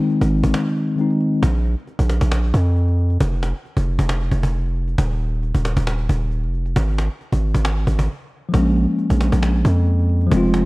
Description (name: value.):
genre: hip hop, trap.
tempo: 135 BPM.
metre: 4/4.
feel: half-time.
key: Bb minor.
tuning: A4 = 439 Hz.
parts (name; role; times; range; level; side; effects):
mellow tine electric piano; accompaniment; 0.0-1.4, 8.5-10.7 s; Eb3 to F4; -18 LUFS; left 1 dB; auto-pan, low-pass filter.
cajon; drums; 0.1-10.6 s; none; -24 LUFS; equal; none.
hard-hitting 808-style bass; bass; 0.2-10.6 s; Eb1 to F2; -18 LUFS; equal; none.
room: small room reverb.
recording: worn, warbling old tape, cassette tape, warbly pitch drift.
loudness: -17 LUFS.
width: side -22 dB against mid.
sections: 0.0-10.7 A section.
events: break 0.5-1.4, 8.1-8.5.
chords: 0.0 Ab; 1.4 Bb5; 3.2 N.C.; 5.0 Ebsus2; 6.8 N.C.; 8.5 Bbm7.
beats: 0.09 0.54 0.98 | 1.43 1.87 2.32 2.76 | 3.21 3.65 4.09 4.54 | 4.98 5.43 5.87 6.32 | 6.76 7.21 7.65 8.09 | 8.54 8.98 9.43 9.87 | 10.32.